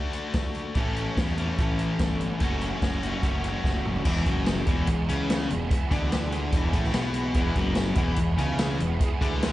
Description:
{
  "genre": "indie rock",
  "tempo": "146 BPM",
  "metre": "4/4",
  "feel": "straight",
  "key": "E major",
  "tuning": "A4 = 441 Hz",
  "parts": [
    { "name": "cranked stack guitar", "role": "riff", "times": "0.0-9.5 s", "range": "E2 to F#4", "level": "-29 LUFS", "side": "left 3 dB", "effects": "overdrive" },
    { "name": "vintage drum kit", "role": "drums", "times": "0.1-9.5 s", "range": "crash cymbal, hi-hat, kick drum, snare drum, toms", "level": "-27 LUFS", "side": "equal", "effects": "none" },
    { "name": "sludgy distorted guitar", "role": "riff", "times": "0.8-9.5 s", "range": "E2 to A4", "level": "-32 LUFS", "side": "right 5 dB", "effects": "overdrive, ensemble chorus, analog delay, slapback echo" },
    { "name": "fuzz fingered electric bass", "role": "bass", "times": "0.8-9.5 s", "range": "E1 to E2", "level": "-30 LUFS", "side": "equal", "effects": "overdrive" },
    { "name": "sweeping resonant pad", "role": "sustained chords", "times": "4.9-9.5 s", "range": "G#4 to B5", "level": "-40 LUFS", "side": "equal", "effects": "chorus" }
  ],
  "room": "little or no reverb",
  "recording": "live gig heard through the venue's PA, club reverb, nothing above 10.3 kHz",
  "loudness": "-23 LUFS",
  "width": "side -15 dB against mid",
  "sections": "0.0-4.1 A section; 4.1-9.5 A section",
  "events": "drum fill 3.6-4.1",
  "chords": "0.0 D; 0.8 A; 2.4 F#m; 4.1 E"
}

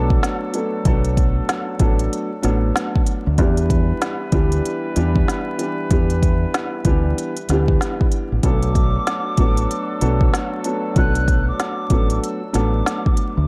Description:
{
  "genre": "hip hop, boom-bap hip-hop",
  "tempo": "95 BPM",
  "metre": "4/4",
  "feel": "swing 63% on 16ths",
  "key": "B minor",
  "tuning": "A4 = 442 Hz",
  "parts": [
    { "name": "mellow silver concert flute", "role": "melody", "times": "0.0-0.2, 8.5-13.5 s", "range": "D6 to F#6", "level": "-30 LUFS", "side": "equal", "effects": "high-pass filter, low-pass filter, slapback echo" },
    { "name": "dark upright piano", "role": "accompaniment", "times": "0.0-13.4 s", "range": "E3 to A4", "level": "-26 LUFS", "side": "equal", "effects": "high-pass filter, low-pass filter" },
    { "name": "warm horn section", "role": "stabs", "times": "0.0-13.1 s", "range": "F#3 to B4", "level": "-33 LUFS", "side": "equal", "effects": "high-pass filter, low-pass filter, slapback echo" },
    { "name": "deep dub fingered electric bass", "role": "bass", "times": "0.0-13.5 s", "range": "A1 to E2", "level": "-22 LUFS", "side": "equal", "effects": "none" },
    { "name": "organic electronic drum kit", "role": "drums", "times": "0.1-13.4 s", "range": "hi-hat, kick drum, snare drum", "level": "-22 LUFS", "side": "equal", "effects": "none" }
  ],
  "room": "studio reverb",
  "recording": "vinyl crackle",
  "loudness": "-19 LUFS",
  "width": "mono",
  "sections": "0.0-13.5 A section",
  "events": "none",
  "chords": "0.0 Bm7; 3.4 Em7; 8.4 Bm7"
}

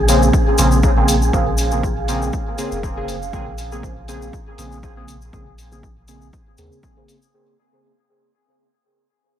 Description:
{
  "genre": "dub techno",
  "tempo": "120 BPM",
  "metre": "4/4",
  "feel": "swing 54% on 16ths",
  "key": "Bb minor",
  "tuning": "A4 = 439 Hz",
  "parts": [
    { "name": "deep dark ambient pad", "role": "sustained chords", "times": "0.0-7.3 s", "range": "Db4 to F5", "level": "-28 LUFS", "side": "right 3 dB", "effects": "chorus, built-in reverb, sidechain pumping" },
    { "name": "soft dub sub bass", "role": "bass", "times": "0.0-6.7 s", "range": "F1 to Eb2", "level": "-21 LUFS", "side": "equal", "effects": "sidechain pumping" },
    { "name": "wind-like tuned noise texture", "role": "texture", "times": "0.0-7.3 s", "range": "Ab4", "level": "-28 LUFS", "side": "right 5 dB", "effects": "built-in reverb, sidechain pumping" },
    { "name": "resonant sweep polysynth", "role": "stabs", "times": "0.1-7.2 s", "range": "Db3 to Ab4", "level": "-21 LUFS", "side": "equal", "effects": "chorus, phaser, sidechain pumping, dub echo" },
    { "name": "electronic hi-hat", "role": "drums", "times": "0.1-7.2 s", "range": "none", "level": "-28 LUFS", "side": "left 2 dB", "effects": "low-pass filter on hats, low-pass filter on room" },
    { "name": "tube shaker", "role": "percussion", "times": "0.1-7.3 s", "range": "none", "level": "-27 LUFS", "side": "left 3 dB", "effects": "none" },
    { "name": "electronic kick drum", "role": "drums", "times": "0.3-6.9 s", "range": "none", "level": "-21 LUFS", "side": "equal", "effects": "none" }
  ],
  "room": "light reverb",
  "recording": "dry, gritty hardware recording",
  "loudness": "-15 LUFS",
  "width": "side -10 dB against mid",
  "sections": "0.0-7.3 A section",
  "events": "fade-out 0.0-7.3",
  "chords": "0.0 Bbm9"
}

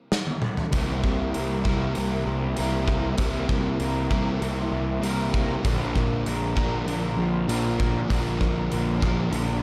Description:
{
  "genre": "rock, shoegaze and dream pop",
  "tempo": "98 BPM",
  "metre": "4/4",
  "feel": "straight",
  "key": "C mixolydian",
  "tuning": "A4 = 440 Hz",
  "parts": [
    { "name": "gated 80s drum kit", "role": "drums", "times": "0.1-9.5 s", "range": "hi-hat, kick drum, snare drum, toms", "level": "-29 LUFS", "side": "equal", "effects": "none" },
    { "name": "overdriven semi-hollow guitar", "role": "riff", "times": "0.7-9.6 s", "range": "Bb2 to Bb4", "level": "-32 LUFS", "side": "equal", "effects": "lush chorus" },
    { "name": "overdriven semi-hollow guitar", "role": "riff", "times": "0.7-9.6 s", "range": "Bb2 to E4", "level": "-32 LUFS", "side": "equal", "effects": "reverse reverb" },
    { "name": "fuzz picked electric bass", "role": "bass", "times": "0.7-9.6 s", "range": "Bb1 to C2", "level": "-30 LUFS", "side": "equal", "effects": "overdrive" }
  ],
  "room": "small room ambience",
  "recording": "dark, warm production",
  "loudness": "-25 LUFS",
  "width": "mono",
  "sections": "0.7-9.6 A section",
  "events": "drum fill 0.1-0.7",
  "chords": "0.0 N.C.; 0.7 C7; 5.6 Bb"
}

